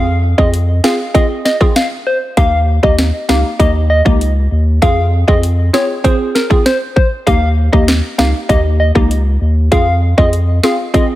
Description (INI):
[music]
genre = dancehall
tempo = 98 BPM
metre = 4/4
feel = straight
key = F minor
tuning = A4 = 438 Hz
[part]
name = soft struck synth lead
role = melody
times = 0.0-11.1 s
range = Bb4 to F5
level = -17 LUFS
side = left 1 dB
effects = chorus, tape echo
[part]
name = glassy wavetable pluck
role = accompaniment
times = 0.0-11.2 s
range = Bb3 to Ab4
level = -18 LUFS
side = equal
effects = chorus
[part]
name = saturated sub bass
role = bass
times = 0.0-10.6 s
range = Db2 to F2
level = -13 LUFS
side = equal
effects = none
[part]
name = island pop drum kit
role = drums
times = 0.4-11.1 s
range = hi-hat, kick drum, rim click, snare drum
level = -14 LUFS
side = equal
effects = none
[sound]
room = light reverb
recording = heavily compressed radio sound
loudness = -10 LUFS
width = side -15 dB against mid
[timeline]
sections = 0.0-11.2 A section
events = none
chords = 0.0 Fm; 2.4 Eb; 4.8 Fm; 7.3 Eb; 9.7 Fm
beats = 0.54 1.15 1.76 | 2.37 2.98 3.60 4.21 | 4.82 5.43 6.04 6.66 | 7.27 7.88 8.49 9.11 | 9.72 10.33 10.94